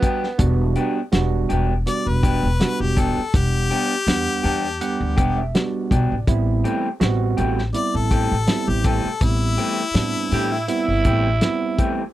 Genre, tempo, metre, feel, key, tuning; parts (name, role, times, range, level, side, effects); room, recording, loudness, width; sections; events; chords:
straight-eighth soul blues; 82 BPM; 4/4; swing 54% on 16ths; E minor; A4 = 440 Hz
breathy tenor saxophone; second line; 0.0-0.7, 10.3-11.9 s; B3 to G4; -24 LUFS; right 3 dB
overdriven tine electric piano; accompaniment; 0.0-12.0 s; G3 to A5; -25 LUFS; right 5 dB; wide subtle chorus
electric guitar through a small old amp; stabs; 0.0-12.0 s; E3 to G4; -25 LUFS; left 3 dB
warm soul drum kit; drums; 0.0-12.0 s; hi-hat, kick drum, snare drum; -20 LUFS; equal
upright bass; bass; 0.4-11.4 s; E1 to A2; -22 LUFS; equal
bright harmonica; melody; 1.9-11.4 s; E4 to D5; -25 LUFS; left 4 dB
little or no reverb; dry, close 1970s-style studio recording; -18 LUFS; side -14 dB against mid
0.0-12.1 A section
tine electric piano fill 4.1-6.3
0.0 Em7; 6.3 Am7